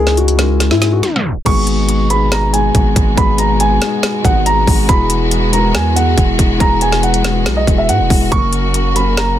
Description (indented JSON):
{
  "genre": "hip hop, trap",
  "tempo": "140 BPM",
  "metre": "4/4",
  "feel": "half-time",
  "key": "G# minor",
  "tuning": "A4 = 439 Hz",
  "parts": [
    { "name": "dark concert grand piano", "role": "melody", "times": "0.0-9.3 s", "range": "E4 to C#6", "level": "-17 LUFS", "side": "right 1 dB", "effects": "ping-pong delay" },
    { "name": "felt-muted upright piano", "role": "accompaniment", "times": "0.0-9.4 s", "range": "F#3 to A#4", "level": "-18 LUFS", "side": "left 5 dB", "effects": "none" },
    { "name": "distorted 808-style bass", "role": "bass", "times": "0.0-9.4 s", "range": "E1 to G#2", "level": "-16 LUFS", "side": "equal", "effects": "distortion" },
    { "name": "trap drum kit", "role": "drums", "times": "0.1-9.3 s", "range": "crash cymbal, hi-hat, kick drum, snare drum", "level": "-16 LUFS", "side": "equal", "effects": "none" },
    { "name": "warm studio string section", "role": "sustained chords", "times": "1.5-9.4 s", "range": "B2 to F#4", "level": "-22 LUFS", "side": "equal", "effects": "none" }
  ],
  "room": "small room ambience",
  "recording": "dense, heavily limited modern master, tape stop",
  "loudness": "-11 LUFS",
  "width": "side -11 dB against mid",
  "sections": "0.0-1.5 A section; 1.5-9.4 B section",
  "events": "drum fill 0.6-1.5; tape stop 1.0-1.5",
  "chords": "0.0 C#madd9; 1.5 G#m7; 4.9 Eadd9; 8.3 F#"
}